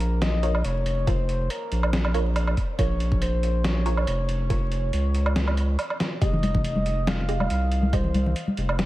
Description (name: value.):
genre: deep dubstep.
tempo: 140 BPM.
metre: 4/4.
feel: swing 54% on 16ths, half-time.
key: unclear.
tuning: A4 = 440 Hz.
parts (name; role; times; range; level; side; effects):
breathy flute-like synth lead; melody; 0.0-8.4 s; Bb4 to F5; -32 LUFS; equal; wide subtle chorus, dub echo.
saturated sub bass; bass; 0.0-8.9 s; F1 to Db2; -24 LUFS; equal; none.
trip hop sampler-style drum kit; drums; 0.0-8.9 s; hi-hat, snare drum, woodblock; -30 LUFS; right 1 dB; overdrive, small room reverb.
filtered dub chord stab; stabs; 0.4-8.1 s; F4 to Eb5; -36 LUFS; right 2 dB; phaser, wide subtle chorus, dub echo.
electronic kick drum; drums; 1.1-8.0 s; none; -25 LUFS; equal; small room reverb.
congas; percussion; 6.3-8.9 s; none; -28 LUFS; left 1 dB; none.
room: digital ambience.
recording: vinyl crackle.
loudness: -22 LUFS.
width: side -16 dB against mid.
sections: 0.0-8.9 A section.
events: break 5.8-6.2; drum fill 6.0.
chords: 0.0 Bbm; 6.2 Fm7.